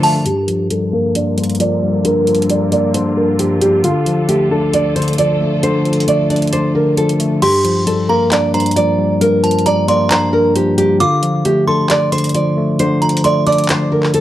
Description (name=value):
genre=hip hop, trap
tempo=134 BPM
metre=4/4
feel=half-time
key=G minor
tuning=A4 = 440 Hz
part: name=nylon-string guitar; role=melody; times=0.0-14.2 s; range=F4 to D5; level=-16 LUFS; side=right 1 dB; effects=low-pass filter, analog delay
part: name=delicate synth tine bell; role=second line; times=0.0-0.2, 7.4-14.2 s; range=A5 to D6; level=-19 LUFS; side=right 1 dB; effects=chorus, analog delay
part: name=barky tine electric piano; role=accompaniment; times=0.0-14.2 s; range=G2 to D5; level=-16 LUFS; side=left 1 dB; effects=overdrive, low-pass filter
part: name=bright studio string section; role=sustained chords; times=0.0-7.4 s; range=D2 to Bb4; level=-26 LUFS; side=left 2 dB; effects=low-pass filter
part: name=trap drum kit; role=drums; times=0.0-14.2 s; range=crash cymbal, handclaps, hi-hat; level=-22 LUFS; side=equal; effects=none
room=little or no reverb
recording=dry, gritty hardware recording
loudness=-12 LUFS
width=side -13 dB against mid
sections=0.3-7.4 A section; 7.4-14.2 B section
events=break 0.0; filter sweep 0.3-7.4; kick muted 6.5-7.4, 7.4-14.2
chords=0.3 Gm7; 3.8 Dm; 7.4 Gm7; 11.0 Dm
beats=| 0.26 0.70 1.15 1.60 | 2.05 2.50 2.94 3.39 | 3.84 4.29 4.74 5.18 | 5.63 6.08 6.53 6.97 | 7.42 7.87 8.32 8.77 | 9.21 9.66 10.11 10.56 | 11.00 11.45 11.90 12.35 | 12.79 13.24 13.69 14.14